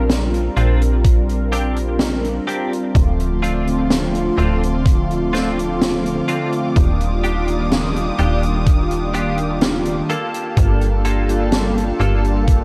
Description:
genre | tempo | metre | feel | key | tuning
vaporwave | 63 BPM | 4/4 | straight | unclear | A4 = 440 Hz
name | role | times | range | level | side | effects
mellow synth brass | accompaniment | 0.0-12.6 s | D3 to Bb4 | -23 LUFS | equal | analog chorus, tape echo
slap-like FM bass | bass | 0.0-12.6 s | D1 to Bb1 | -22 LUFS | equal | none
open jazz drum kit | drums | 0.1-12.6 s | hi-hat, snare drum | -25 LUFS | equal | gated reverb
direct-recorded clean electric guitar | riff | 0.6-12.2 s | Bb3 to A4 | -29 LUFS | equal | ensemble chorus, low-pass filter, tape echo
electronic kick drum | drums | 1.0-12.6 s | none | -16 LUFS | equal | none
dark studio string section | sustained chords | 3.0-12.6 s | G4 to Eb6 | -32 LUFS | equal | none
room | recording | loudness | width
light reverb, small room ambience | none | -18 LUFS | mono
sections
0.0-12.6 A section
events
none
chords
0.0 Bb69; 3.0 Dm7; 6.8 Ebmaj9; 10.1 Gm9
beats
0.10 1.05 2.00 | 2.95 3.91 4.86 5.81 | 6.76 7.71 8.67 9.62 | 10.57 11.53 12.48

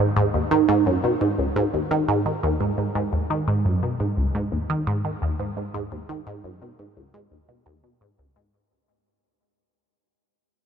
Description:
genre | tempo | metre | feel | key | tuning
ambient | 86 BPM | 4/4 | straight | unclear | A4 = 440 Hz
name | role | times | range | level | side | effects
resonant blip pluck | solo | 0.0-8.5 s | C#2 to D#3 | -21 LUFS | right 1 dB | phaser, analog delay
room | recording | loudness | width
moderate huge ambient reverb, RT60 8.0 s | none | -21 LUFS | side -7 dB against mid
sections
0.0-8.5 A section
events
fade-out 1.1-8.5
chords
none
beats
| 0.17 0.86 1.56 2.26 | 2.96 3.65 4.35 5.05 | 5.75 6.44 7.14 7.84

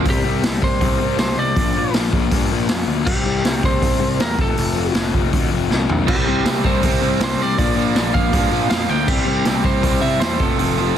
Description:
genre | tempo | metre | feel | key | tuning
punk rock | 160 BPM | 4/4 | straight | unclear | A4 = 443 Hz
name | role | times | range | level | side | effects
overdriven electric guitar | riff | 0.0, 6.1-11.0 s | F2 to C4 | -23 LUFS | right 16 dB | none
raw garage guitar | riff | 0.0-11.0 s | F2 to C4 | -22 LUFS | left 15 dB | overdrive
lightly driven lead guitar | melody | 0.1-11.0 s | G4 to G5 | -23 LUFS | right 1 dB | none
fuzz picked electric bass | bass | 0.1-10.9 s | F1 to G2 | -23 LUFS | right 1 dB | overdrive
raw garage drum kit | drums | 0.1-10.7 s | crash cymbal, hi-hat, kick drum, snare drum, toms | -20 LUFS | right 1 dB | none
room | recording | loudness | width
light reverb | dense, heavily limited modern master | -16 LUFS | side -9 dB against mid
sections
0.1-11.0 A section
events
drum fill 5.7-6.1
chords
0.1 C5; 1.6 Bb; 3.1 C; 4.4 F; 6.1 C5; 7.6 Bb; 9.1 C; 10.4 F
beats
| 0.06 0.44 0.81 1.19 | 1.57 1.94 2.32 2.70 | 3.07 3.45 3.83 4.20 | 4.58 4.95 5.33 5.71 | 6.08 6.46 6.83 7.21 | 7.58 7.96 8.34 8.71 | 9.09 9.46 9.84 10.22 | 10.59 10.97

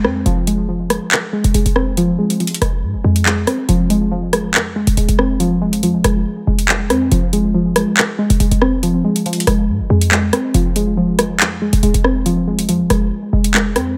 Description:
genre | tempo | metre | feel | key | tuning
hip hop, drill | 140 BPM | 4/4 | half-time | F minor | A4 = 440 Hz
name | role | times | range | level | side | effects
warbly dusty pluck | arpeggios | 0.0-14.0 s | F3 to C4 | -19 LUFS | equal | chorus, low-pass filter, tape echo
short 808-style bass | bass | 0.0-14.0 s | Eb1 to Ab2 | -20 LUFS | equal | none
drill drum kit | drums | 0.0-13.9 s | handclaps, hi-hat, rim click | -20 LUFS | equal | none
room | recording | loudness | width
light reverb | none | -16 LUFS | mono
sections
0.0-7.1 A section; 7.1-14.0 B section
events
break 0.0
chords
0.0 Fm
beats
| 0.26 0.69 1.12 1.54 | 1.97 2.40 2.83 3.26 | 3.69 4.12 4.54 4.97 | 5.40 5.83 6.26 6.69 | 7.12 7.54 7.97 8.40 | 8.83 9.26 9.69 10.12 | 10.54 10.97 11.40 11.83 | 12.26 12.69 13.12 13.54 | 13.97

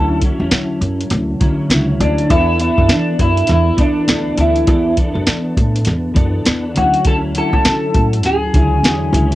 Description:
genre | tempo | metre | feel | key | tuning
indie pop, bedroom pop | 101 BPM | 4/4 | swing 60% on 16ths | D lydian | A4 = 444 Hz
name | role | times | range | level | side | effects
electric guitar through a small old amp | melody | 0.0-9.3 s | D4 to A4 | -17 LUFS | equal | analog chorus, cassette tape, plate reverb, analog delay
clean electric guitar | accompaniment | 0.0-9.3 s | D3 to A4 | -20 LUFS | left 1 dB | ensemble chorus, warbly pitch drift, cassette tape, plate reverb
upright bass | bass | 0.0-9.3 s | C#2 to E3 | -18 LUFS | equal | tube saturation
soft vintage rhythm box | drums | 0.2-9.3 s | hi-hat, kick drum, snare drum | -16 LUFS | equal | none
room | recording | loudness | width
light reverb | home recording on cassette | -12 LUFS | side -16 dB against mid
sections
0.0-9.3 A section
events
none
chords
0.0 Dmaj9; 2.3 E7sus4; 6.8 Dmaj9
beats
0.51 1.11 1.70 | 2.30 2.89 3.48 4.08 | 4.67 5.27 5.86 6.46 | 7.05 7.65 8.24 8.84

